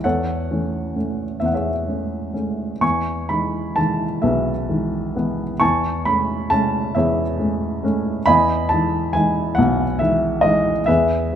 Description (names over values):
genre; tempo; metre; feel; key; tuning
classical, lyrical solo piano; 42-47 BPM (dotted quarters); 6/8; rubato; E major; A4 = 440 Hz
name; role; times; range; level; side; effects
dark baby grand piano; solo; 0.0-11.4 s; B1 to C#6; -18 LUFS; equal; none
room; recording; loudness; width
moderate concert hall reverb, RT60 2.2 s; minimal, uncompressed stereo recording; -18 LUFS; side -9 dB against mid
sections
0.0-11.4 A section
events
none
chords
0.0 Amaj7/E; 2.8 Emaj7; 5.6 Amaj7/E; 8.3 Emaj7